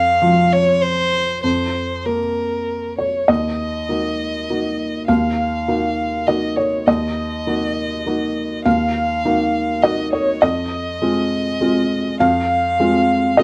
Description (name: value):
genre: neoclassical piano and strings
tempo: 101 BPM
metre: 3/4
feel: rubato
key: unclear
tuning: A4 = 441 Hz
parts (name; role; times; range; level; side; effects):
- warm violin; melody; 0.0-13.4 s; Bb4 to F5; -23 LUFS; equal; none
- felt-muted upright piano; accompaniment; 0.0-13.4 s; Eb2 to F5; -20 LUFS; equal; none
room: light reverb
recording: faint mains hum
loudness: -19 LUFS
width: mono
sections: 0.0-3.3 A section; 3.3-13.4 B section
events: none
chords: 0.0 Bb5/F; 3.3 Ebm; 10.4 Fm7